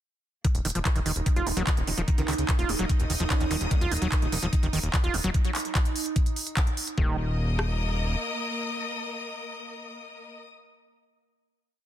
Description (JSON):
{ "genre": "psychedelic trance", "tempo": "147 BPM", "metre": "4/4", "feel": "straight", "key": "unclear", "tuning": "A4 = 440 Hz", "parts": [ { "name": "evolving wavetable pad", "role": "sustained chords", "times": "0.8-7.0 s", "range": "Eb4", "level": "-36 LUFS", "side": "right 7 dB", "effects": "chorus, built-in reverb, sidechain pumping" }, { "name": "overdriven acid bass", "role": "riff", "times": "0.4-7.2 s", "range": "Eb3 to F4", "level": "-32 LUFS", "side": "moving between left 3 dB and right 3 dB", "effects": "distortion, auto-pan, sidechain pumping, digital delay" }, { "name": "drum and bass drum kit", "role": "drums", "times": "0.4-7.7 s", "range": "kick drum, rim click", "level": "-24 LUFS", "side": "equal", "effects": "soft clipping on snare" }, { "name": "techno drum kit", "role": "drums", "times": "0.4-7.0 s", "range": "handclaps, hi-hat", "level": "-32 LUFS", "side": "right 1 dB", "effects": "none" }, { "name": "clear studio string section", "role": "texture", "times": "0.4-10.5 s", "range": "Bb3 to Eb6", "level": "-35 LUFS", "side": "left 3 dB", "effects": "sidechain pumping" }, { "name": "fat analog bass", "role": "bass", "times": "0.5-8.2 s", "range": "Eb1 to Db2", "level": "-29 LUFS", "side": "equal", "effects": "tube saturation" }, { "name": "formant-sweep wobble bass", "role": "second line", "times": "1.6-3.5 s", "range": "Ab3 to Db4", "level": "-44 LUFS", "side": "right 1 dB", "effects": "none" }, { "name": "zap", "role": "sound effects", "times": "3.5-3.6 s", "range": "none", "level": "-39 LUFS", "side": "left 1 dB", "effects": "none" } ], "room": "little or no reverb", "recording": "dense, heavily limited modern master", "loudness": "-24 LUFS", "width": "side -12 dB against mid", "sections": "0.4-7.0 groove; 7.0-10.2 final chord", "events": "fade-in on string section 0.4-5.3", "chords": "0.4 Eb5", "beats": "| 0.45 0.85 1.26 1.67 | 2.08 2.49 2.90 3.30 | 3.71 4.12 4.53 4.93 | 5.34 5.75 6.16 6.57 | 6.98 7.38 7.79 8.20 | 8.61 9.02 9.43 9.83" }